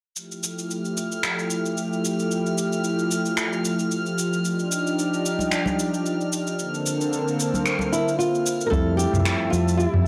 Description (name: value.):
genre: sunset chillout.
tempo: 112 BPM.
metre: 4/4.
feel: swing 55% on 16ths.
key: F major.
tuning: A4 = 440 Hz.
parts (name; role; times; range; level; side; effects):
drifting glass-harmonics texture; texture; 0.5-8.7 s; F6; -37 LUFS; equal; chorus, built-in reverb.
lush unison pad; sustained chords; 0.2-10.1 s; D3 to A5; -27 LUFS; equal; chorus.
smooth R&B drum kit; drums; 0.2-10.0 s; cabasa, finger snaps, toms; -30 LUFS; equal; none.
congas; percussion; 5.4-7.9 s; none; -33 LUFS; equal; none.
flamenco guitar; melody; 7.9-10.1 s; E4 to Bb4; -26 LUFS; equal; none.
soft electric-piano-like synth keys; accompaniment; 8.7-10.1 s; F3 to E4; -29 LUFS; equal; chorus.
fingered electric bass; bass; 8.7-10.1 s; C2 to F2; -25 LUFS; equal; none.
electronic kick drum; drums; 8.7-10.1 s; none; -29 LUFS; equal; overdrive.
room: light reverb.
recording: dry, gritty hardware recording, cassette tape.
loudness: -24 LUFS.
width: mono.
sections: 0.2-8.7 A section; 8.7-10.1 B section.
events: none.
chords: 0.2 Fmaj9; 4.4 Ebmaj9; 6.6 Bbmaj9; 8.7 Fmaj9.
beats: | 0.15 0.69 1.22 1.76 | 2.29 2.83 3.37 3.90 | 4.44 4.97 5.51 6.04 | 6.58 7.12 7.65 8.19 | 8.72 9.26 9.79.